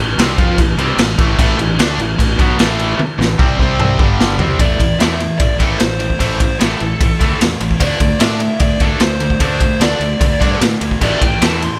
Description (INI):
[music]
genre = hard rock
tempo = 150 BPM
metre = 4/4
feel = straight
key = A minor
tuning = A4 = 440 Hz
[part]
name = cranked stack guitar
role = riff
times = 0.0-11.8 s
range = G2 to F4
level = -26 LUFS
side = equal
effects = overdrive, phaser
[part]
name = tight distorted guitar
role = riff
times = 0.0-11.8 s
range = G2 to F4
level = -23 LUFS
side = equal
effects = distortion
[part]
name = fuzz fingered electric bass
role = bass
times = 0.0-11.7 s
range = G1 to A2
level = -22 LUFS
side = equal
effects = overdrive
[part]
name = raw garage drum kit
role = drums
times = 0.2-11.7 s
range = crash cymbal, kick drum, ride cymbal, snare drum, toms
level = -17 LUFS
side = equal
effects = none
[part]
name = high-gain distorted guitar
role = riff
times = 1.4-4.6 s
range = G2 to D4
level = -25 LUFS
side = equal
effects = distortion
[part]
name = biting lead guitar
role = melody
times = 4.6-11.8 s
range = A4 to C6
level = -24 LUFS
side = equal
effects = overdrive
[sound]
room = light reverb, small room ambience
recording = none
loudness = -14 LUFS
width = mono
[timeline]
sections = 0.0-4.6 A section; 4.6-11.8 B section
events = drum fill 3.0-4.6; lead electric guitar solo 4.6-11.8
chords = 0.0 Am; 3.6 C5; 4.0 G5; 4.4 C5; 4.6 Am; 7.8 D5; 11.0 A5